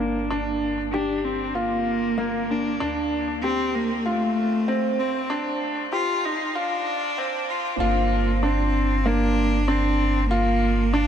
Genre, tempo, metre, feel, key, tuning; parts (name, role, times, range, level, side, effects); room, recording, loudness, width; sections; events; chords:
piano and strings electronica; 96 BPM; 4/4; straight; G minor; A4 = 441 Hz
warm cello; melody; 0.0-11.1 s; A3 to F4; -25 LUFS; equal; low-pass filter
warm grand piano; riff; 0.0-11.1 s; Bb3 to G4; -25 LUFS; equal; ping-pong delay
warm sub bass; bass; 0.0-11.1 s; G1 to D2; -27 LUFS; equal
moderate huge ambient reverb, RT60 6.0 s; high-pass filter; -21 LUFS; side -8 dB against mid
0.0-7.8 A section; 7.8-11.1 B section
build-up 0.0-7.8; filter sweep on cello 0.0-7.8; filter sweep 0.0-7.8; drop 7.8-11.1
0.0 Gm7; 2.8 Dm7; 7.8 Gm7